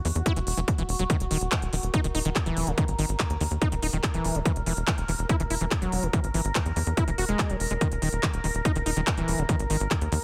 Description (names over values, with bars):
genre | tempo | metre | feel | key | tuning
psychedelic trance | 143 BPM | 4/4 | straight | Eb phrygian | A4 = 440 Hz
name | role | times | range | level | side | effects
overtone-sweeping drone | sustained chords | 0.0-10.2 s | Gb4 to Bb4 | -37 LUFS | equal | chorus, built-in reverb, sidechain pumping
techno drum kit | drums | 0.0-10.2 s | handclaps, hi-hat | -34 LUFS | equal | none
overdriven acid bass | riff | 0.1-10.1 s | Db3 to F#4 | -34 LUFS | equal | sidechain pumping, digital delay
tight sequencer bass | bass | 0.1-10.2 s | Eb1 to E2 | -31 LUFS | equal | none
electronic kick drum | drums | 0.3-10.0 s | none | -29 LUFS | equal | none
room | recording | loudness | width
digital ambience | none | -26 LUFS | mono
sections
0.0-10.2 A section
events
none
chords
0.0 Esus2; 1.1 Eb5; 4.5 E(#11); 7.8 Eb5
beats
0.26 0.68 | 1.10 1.52 1.94 2.36 | 2.78 3.20 3.62 4.04 | 4.46 4.88 5.29 5.71 | 6.13 6.55 6.97 7.39 | 7.81 8.23 8.65 9.07 | 9.49 9.91